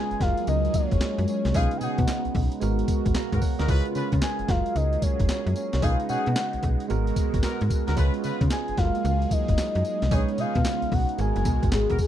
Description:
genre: R&B, new jack swing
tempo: 112 BPM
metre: 4/4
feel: swing 65% on 16ths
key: unclear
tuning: A4 = 440 Hz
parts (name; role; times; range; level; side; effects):
- soft octave-layered synth lead; melody; 0.0-12.1 s; G#4 to G#5; -29 LUFS; left 2 dB; chorus, tremolo
- bell-like tine electric piano; accompaniment; 0.0-12.1 s; G#3 to A#5; -31 LUFS; right 10 dB; none
- phased analog pad; sustained chords; 0.0-12.1 s; B2 to A#4; -33 LUFS; equal; phaser, chorus
- slap-like FM bass; bass; 0.1-12.0 s; F#1 to C#3; -26 LUFS; equal; none
- breakbeat sampler-style drum kit; drums; 0.1-12.1 s; handclaps, hi-hat, kick drum, snare drum, tambourine; -26 LUFS; equal; none
- warm horn section; stabs; 1.5-12.0 s; B3 to B4; -35 LUFS; left 2 dB; none
room: little or no reverb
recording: dry, close 1970s-style studio recording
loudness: -22 LUFS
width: side -11 dB against mid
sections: 0.0-12.1 A section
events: none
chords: 0.2 F#maj9; 1.5 B69; 2.6 G#m9; 3.7 C#7; 4.5 F#maj9; 5.8 B69; 6.9 G#m9; 8.0 C#7; 8.8 F#maj9; 10.1 B69; 11.2 G#m9

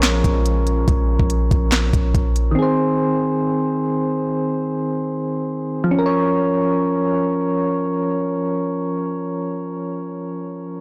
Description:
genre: hip hop, trap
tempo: 142 BPM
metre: 4/4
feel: half-time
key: Bb minor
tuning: A4 = 440 Hz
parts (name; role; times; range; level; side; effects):
- soft electric-piano-like synth keys; accompaniment; 0.0-10.8 s; Eb3 to Db5; -22 LUFS; equal; chorus, tremolo, low-pass filter
- clean 808-style bass; bass; 0.0-2.6 s; Bb1; -22 LUFS; equal; none
- trap drum kit; drums; 0.0-2.5 s; handclaps, hi-hat, kick drum, snare drum; -21 LUFS; equal; none
room: light reverb, digital ambience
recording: blown-out, overdriven recording, overdrive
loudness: -20 LUFS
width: mono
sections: 0.0-5.9 A section; 5.9-9.3 B section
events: none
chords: 0.0 Bbm; 2.6 Ab; 5.9 Bbm

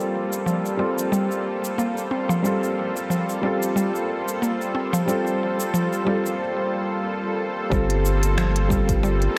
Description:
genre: organic downtempo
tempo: 91 BPM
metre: 4/4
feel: swing 56% on 16ths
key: G minor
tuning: A4 = 440 Hz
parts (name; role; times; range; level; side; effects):
- felt-muted upright piano; accompaniment; 0.0-9.4 s; G3 to A4; -28 LUFS; equal; sidechain pumping, low-pass filter, delay, shimmer reverb
- bowed-like drone; sustained chords; 0.0-9.4 s; G3 to C5; -29 LUFS; equal; built-in reverb, sidechain pumping, shimmer reverb
- organic electronic drum kit; drums; 0.3-9.3 s; cabasa, finger snaps, hi-hat; -33 LUFS; equal; none
- mallet-like synth pluck; arpeggios; 0.5-9.2 s; F3 to C4; -29 LUFS; equal; chorus, delay, shimmer reverb
- round analog bass; bass; 7.7-9.3 s; G1; -24 LUFS; equal; sidechain pumping
- electronic kick drum; drums; 7.7-9.0 s; none; -27 LUFS; equal; none
room: moderate plate reverb, RT60 1.5 s, digital ambience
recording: dreamy mix soaked in reverb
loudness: -23 LUFS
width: mono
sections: 0.0-7.7 A section; 7.7-9.4 B section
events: filter sweep on felt piano 0.0-7.7; break 6.4-7.7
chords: 0.0 Gm11

